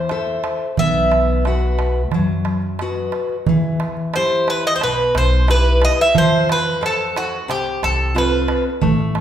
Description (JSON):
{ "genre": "greek folk, Greek bouzouki band", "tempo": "90 BPM", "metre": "4/4", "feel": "straight", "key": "E harmonic minor", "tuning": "A4 = 439 Hz", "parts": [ { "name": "Greek bouzouki", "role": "melody", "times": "0.0-8.6 s", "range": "F#4 to E5", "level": "-18 LUFS", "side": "right 1 dB", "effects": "none" }, { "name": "fingerpicked steel-string acoustic guitar", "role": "accompaniment", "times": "0.0-9.2 s", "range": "B2 to F#5", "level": "-23 LUFS", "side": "left 2 dB", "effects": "none" }, { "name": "upright bass", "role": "bass", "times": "0.0-9.2 s", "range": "A1 to F#2", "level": "-21 LUFS", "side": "equal", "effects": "none" }, { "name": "darbuka", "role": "percussion", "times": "0.1-9.2 s", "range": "none", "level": "-23 LUFS", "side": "right 3 dB", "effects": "none" } ], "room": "wet recital hall reverb, RT60 1.4 s", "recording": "recorded in a church or concert hall", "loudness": "-15 LUFS", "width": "side -10 dB against mid", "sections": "0.0-3.5 A section; 3.5-9.2 B section", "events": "none", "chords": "0.0 Am; 0.8 B; 3.5 Em; 6.2 F" }